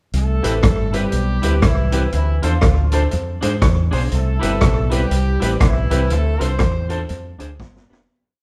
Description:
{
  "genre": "ska",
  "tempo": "121 BPM",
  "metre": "4/4",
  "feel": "swing 61% on 8ths",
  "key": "C major",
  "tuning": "A4 = 440 Hz",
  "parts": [
    { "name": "fingered electric bass", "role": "bass", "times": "0.1-8.1 s", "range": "F1 to Ab2", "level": "-21 LUFS", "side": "equal", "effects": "none" },
    { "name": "street-band drum kit", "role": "drums", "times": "0.1-8.1 s", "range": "hi-hat, kick drum, rim click, snare drum", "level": "-21 LUFS", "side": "equal", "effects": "none" },
    { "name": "mellow horn section", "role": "melody", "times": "0.2-6.9 s", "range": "E3 to C5", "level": "-27 LUFS", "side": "equal", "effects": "none" },
    { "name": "clean electric guitar", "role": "accompaniment", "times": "0.4-8.0 s", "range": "D4 to C5", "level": "-32 LUFS", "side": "equal", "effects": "none" },
    { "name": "dark upright piano", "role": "stabs", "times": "0.4-8.0 s", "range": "C4 to C5", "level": "-29 LUFS", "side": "equal", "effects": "none" }
  ],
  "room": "moderate large studio reverb, RT60 1.2 s",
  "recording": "band playing live in one room",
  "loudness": "-18 LUFS",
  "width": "mono",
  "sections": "0.1-8.1 head",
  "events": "fade-out 6.1-8.1; drum fill 7.6-8.1",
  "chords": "0.1 Cmaj7; 2.1 Dm7; 3.1 Fm6; 4.1 Cmaj7; 6.1 Dm7; 7.1 Fm6; 7.6 G7",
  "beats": "| 0.14 0.63 1.13 1.63 | 2.13 2.62 3.12 3.62 | 4.12 4.61 5.11 5.61 | 6.11 6.60 7.10 7.60"
}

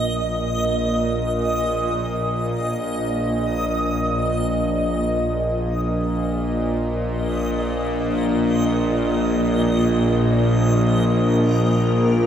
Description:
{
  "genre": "dark ambient drone",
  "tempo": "free time",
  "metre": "none",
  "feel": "none",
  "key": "unclear",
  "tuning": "A4 = 442 Hz",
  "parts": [
    { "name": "bowed-like drone", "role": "drone", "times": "0.0-12.3 s", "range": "Bb1 to Bb2", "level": "-19 LUFS", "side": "equal", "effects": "built-in reverb" },
    { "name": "backwards swelling texture", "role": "texture", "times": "0.0-12.3 s", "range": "Bb4 to Eb5", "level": "-25 LUFS", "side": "right 1 dB", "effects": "built-in reverb, shimmer reverb" },
    { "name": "dark analog pad", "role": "sustained chords", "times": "10.8-12.3 s", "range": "Bb3 to F4", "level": "-24 LUFS", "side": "left 1 dB", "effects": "chorus" }
  ],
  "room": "wet cathedral reverb, RT60 5.3 s",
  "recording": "none",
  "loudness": "-18 LUFS",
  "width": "side -9 dB against mid",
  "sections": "0.0-12.3 A section",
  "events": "none",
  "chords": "0.0 Bb5",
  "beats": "free time"
}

